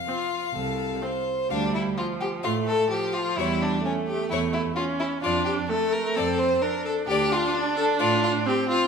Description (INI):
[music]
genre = quick classical-period movement for string quartet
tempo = 129 BPM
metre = 4/4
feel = straight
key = D minor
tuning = A4 = 440 Hz
[part]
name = bright violin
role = melody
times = 0.0-8.2 s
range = C#5 to F5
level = -33 LUFS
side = left 8 dB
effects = none
[part]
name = clear violin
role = second line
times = 0.1-8.9 s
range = C#4 to C5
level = -25 LUFS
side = left 3 dB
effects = none
[part]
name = clear viola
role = accompaniment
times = 0.1-8.9 s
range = F3 to D4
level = -28 LUFS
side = right 4 dB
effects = none
[part]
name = rich cello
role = bass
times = 0.5-8.4 s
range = C2 to A2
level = -31 LUFS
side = right 5 dB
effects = none
[sound]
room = wet recital hall reverb, RT60 1.6 s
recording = minimal, uncompressed stereo recording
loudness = -22 LUFS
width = side -6 dB against mid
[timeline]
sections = 0.0-1.5 A section; 1.5-8.9 B section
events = none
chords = 0.0 F; 1.5 Dm; 3.4 A7/E; 5.2 Dm/F; 7.1 D5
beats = 0.07 0.55 1.03 | 1.50 1.97 2.44 2.90 | 3.37 3.84 4.31 4.77 | 5.23 5.70 6.16 6.63 | 7.09 7.55 8.01 8.46